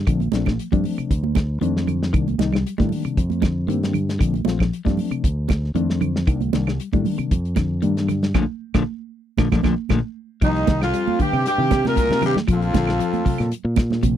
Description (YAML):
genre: afrobeat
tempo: 116 BPM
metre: 4/4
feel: swing 54% on 16ths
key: C dorian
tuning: A4 = 441 Hz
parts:
  - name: fingered electric bass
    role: bass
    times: 0.0-14.2 s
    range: Bb1 to C3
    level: -23 LUFS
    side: equal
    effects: none
  - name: reed electric piano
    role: accompaniment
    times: 0.1-10.0 s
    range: Eb3 to F4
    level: -26 LUFS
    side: left 8 dB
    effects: fast tremolo
  - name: clean electric guitar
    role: arpeggios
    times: 0.1-14.2 s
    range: Bb2 to G3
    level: -26 LUFS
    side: left 6 dB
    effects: none
  - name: damped 70s drum kit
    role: drums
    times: 0.1-14.2 s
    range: hi-hat, kick drum, snare drum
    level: -22 LUFS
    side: equal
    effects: none
  - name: claves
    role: percussion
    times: 0.1-13.9 s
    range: none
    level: -33 LUFS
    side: right 30 dB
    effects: none
  - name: congas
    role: percussion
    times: 0.2-14.2 s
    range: none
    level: -26 LUFS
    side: right 14 dB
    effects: none
  - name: warm horn section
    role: melody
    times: 10.4-13.5 s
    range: Eb4 to Bb4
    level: -22 LUFS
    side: equal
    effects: none
  - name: raspy baritone saxophone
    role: second line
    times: 10.4-13.5 s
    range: Eb2 to Bb2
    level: -28 LUFS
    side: left 10 dB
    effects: none
  - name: warm trumpet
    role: second line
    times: 10.4-13.5 s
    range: Eb4 to Bb4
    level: -30 LUFS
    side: right 8 dB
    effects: none
room: little or no reverb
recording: dry, close 1970s-style studio recording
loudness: -18 LUFS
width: side -10 dB against mid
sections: 0.0-10.4 A section; 10.4-14.2 B section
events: band accent 8.3-10.4; drum fill 9.9-10.4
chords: 0.1 Bbmaj9; 2.1 Cm9; 4.2 Bbmaj9; 6.3 Cm9; 8.3 Bbmaj7; 10.4 Cm; 12.5 Bbmaj9